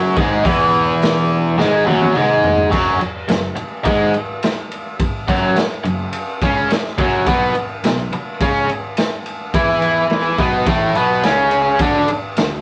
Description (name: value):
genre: garage rock duo or trio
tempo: 106 BPM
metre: 4/4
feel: straight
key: F# minor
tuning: A4 = 440 Hz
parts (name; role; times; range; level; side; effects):
- biting overdriven guitar; riff; 0.0-12.6 s; E2 to E4; -18 LUFS; equal; none
- fuzz picked electric bass; bass; 0.0-12.6 s; E1 to E2; -29 LUFS; equal; overdrive
- raw garage drum kit; drums; 0.2-12.5 s; crash cymbal, hi-hat, kick drum, ride cymbal, snare drum, toms; -23 LUFS; equal; vintage 12-bit sampler grit
room: wet small room ambience, RT60 0.5 s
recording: rough rehearsal-room recording, cassette tape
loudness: -17 LUFS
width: mono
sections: 0.0-2.7 A section; 2.7-12.6 B section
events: drum fill 1.6-2.7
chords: 0.0 N.C.; 2.7 F#5; 7.3 Aadd9; 11.8 D5